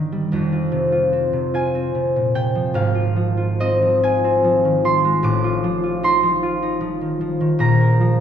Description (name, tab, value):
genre	classical, solo harp piece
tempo	50 BPM (dotted quarters)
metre	6/8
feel	rubato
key	unclear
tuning	A4 = 441 Hz
part	concert harp	solo	0.0-8.2 s	F1 to D6	-16 LUFS	equal	none
room	wet scoring stage reverb, RT60 1.9 s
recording	recorded in a church or concert hall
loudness	-16 LUFS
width	side -9 dB against mid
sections	0.0-8.2 A section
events	none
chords	0.3 Fm; 2.7 Fm/Ab; 5.2 F7/A; 7.6 Bb5